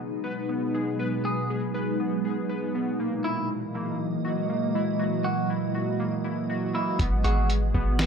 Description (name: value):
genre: hip hop, atmospheric cloud-rap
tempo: 120 BPM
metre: 4/4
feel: half-time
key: unclear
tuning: A4 = 439 Hz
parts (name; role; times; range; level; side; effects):
- glassy FM pad; sustained chords; 0.0-8.1 s; A#2 to D#5; -28 LUFS; right 1 dB; ensemble chorus, built-in reverb, phaser, sidechain pumping
- warbly lo-fi synth keys; arpeggios; 0.0-8.1 s; A#3 to B4; -31 LUFS; left 1 dB; chorus, analog delay
- clean electric guitar; melody; 1.2-7.5 s; E4 to G#4; -34 LUFS; right 2 dB; analog delay
- soft 808-style bass; bass; 7.0-8.1 s; G#1; -24 LUFS; equal; none
- lo-fi sampler-style drum kit; drums; 7.0-8.1 s; hi-hat, kick drum, snare drum; -27 LUFS; equal; none
room: light reverb, digital ambience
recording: echo-heavy mix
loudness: -25 LUFS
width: side -6 dB against mid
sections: 0.0-7.0 A section; 7.0-8.1 B section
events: none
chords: 0.0 G#m7; 3.0 F#13; 7.0 G#m7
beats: 0.49 | 0.99 1.49 1.99 2.49 | 2.99 3.49 3.99 4.49 | 4.99 5.49 5.99 6.49 | 6.99 7.49 7.99